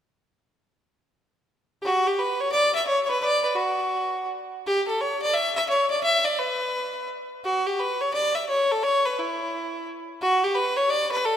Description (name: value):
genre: celtic folk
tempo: 172 BPM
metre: 4/4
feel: swing 63% on 8ths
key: E dorian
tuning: A4 = 444 Hz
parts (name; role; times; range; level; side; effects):
- bright fiddle; solo; 1.8-11.4 s; E4 to E5; -22 LUFS; equal; none
room: wet lush hall reverb, RT60 2.9 s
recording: rough home demo mix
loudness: -22 LUFS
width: side -9 dB against mid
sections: 0.5-1.8 A section; 1.8-11.4 B section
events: none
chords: none